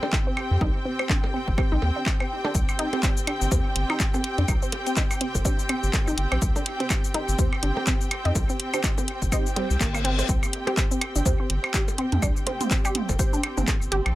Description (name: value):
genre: minimal techno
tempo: 124 BPM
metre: 4/4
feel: swing 58% on 16ths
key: unclear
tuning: A4 = 440 Hz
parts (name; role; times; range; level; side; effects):
- resonant blip pluck; riff; 0.0-14.0 s; G3 to C5; -31 LUFS; equal; chorus, sidechain pumping, digital delay
- electronic percussion blips and toms; percussion; 0.0-14.1 s; none; -32 LUFS; right 2 dB; dub echo
- warm studio string section; texture; 0.0-14.2 s; C4 to A5; -31 LUFS; equal; sidechain pumping
- electronic kick drum; drums; 0.1-13.8 s; none; -25 LUFS; equal; none
- garage drum kit; drums; 0.1-14.1 s; cabasa, handclaps, hi-hat; -29 LUFS; left 1 dB; none
- round analog bass; bass; 0.5-14.1 s; G1 to F2; -25 LUFS; equal; sidechain pumping
- filtered dub chord stab; stabs; 1.0-13.3 s; C4 to C5; -35 LUFS; right 2 dB; phaser, analog chorus, dub echo
- reverse cymbal; sound effects; 9.6-10.3 s; none; -32 LUFS; left 6 dB; none
room: light reverb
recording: none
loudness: -22 LUFS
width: side -16 dB against mid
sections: 0.0-14.2 A section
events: filter sweep on synth pluck 0.0-14.2; filter sweep on synth stab 0.0-14.2; reverse cymbal 9.6-10.3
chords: 0.0 C5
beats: 0.13 | 0.61 1.10 1.58 2.06 | 2.55 3.03 3.52 4.00 | 4.48 4.97 5.45 5.93 | 6.42 6.90 7.39 7.87 | 8.35 8.84 9.32 9.81 | 10.29 10.77 11.26 11.74 | 12.22 12.71 13.19 13.68